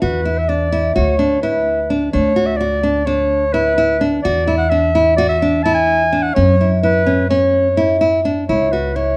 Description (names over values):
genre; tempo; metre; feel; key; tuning
contemporary instrumental, chamber music in an uneven meter; 255 BPM (eighths); 9/8; straight; unclear; A4 = 435 Hz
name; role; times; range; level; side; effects
warm clarinet; melody; 0.0-9.2 s; B4 to A5; -20 LUFS; equal; none
nylon-string guitar; arpeggios; 0.0-9.1 s; C#4 to F#4; -19 LUFS; equal; none
upright bass; bass; 0.0-9.2 s; C#2 to F#2; -22 LUFS; equal; none
room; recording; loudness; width
moderate recital hall reverb, RT60 1.6 s; dark, warm production; -15 LUFS; mono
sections
0.0-8.5 A section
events
none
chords
0.0 Bmadd11/E; 1.0 Bm/D; 4.3 E9; 6.4 F#5; 8.5 Dmaj7/C# (rootless)